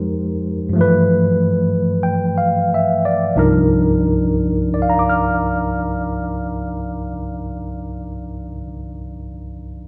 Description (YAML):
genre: jazz ballad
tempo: 44-49 BPM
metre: 4/4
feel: swing 66% on 8ths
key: C minor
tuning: A4 = 441 Hz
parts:
  - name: barky tine electric piano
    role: solo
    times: 0.0-9.9 s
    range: C2 to F6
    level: -19 LUFS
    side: equal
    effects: overdrive
room: wet club reverb, RT60 0.6 s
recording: heard from further back in the room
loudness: -18 LUFS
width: mono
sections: 0.0-3.4 A section; 3.4-8.8 B section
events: slowing down 0.0-3.4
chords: 0.0 Fm11; 0.7 G13; 3.4 Cm11